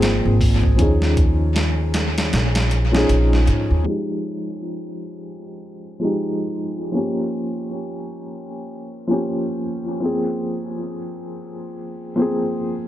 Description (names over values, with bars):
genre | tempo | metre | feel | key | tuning
trip hop | 78 BPM | 4/4 | swing 59% on 16ths | F minor | A4 = 440 Hz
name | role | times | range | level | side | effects
felt-muted upright piano | accompaniment | 0.0-12.9 s | F3 to Ab4 | -22 LUFS | equal | tremolo, tape echo
upright bass | bass | 0.0-3.8 s | Ab1 to Ab2 | -18 LUFS | equal | none
boom bap sampler-style drum kit | drums | 0.0-3.7 s | hi-hat, kick drum, snare drum | -21 LUFS | equal | tape echo
room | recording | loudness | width
light reverb, small room reverb | echo-heavy mix, low-pass filter | -18 LUFS | side -13 dB against mid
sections
0.0-3.9 A section; 3.9-12.9 B section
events
filter sweep 3.9-12.9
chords
0.0 Ab69; 0.8 Eb9sus4; 3.9 Fm9; 6.9 Gm7b5; 10.0 Ab69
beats
0.02 | 0.79 1.56 2.33 3.10 | 3.87 4.64 5.41 6.18 | 6.95 7.71 8.48 9.25 | 10.02 10.79 11.56 12.33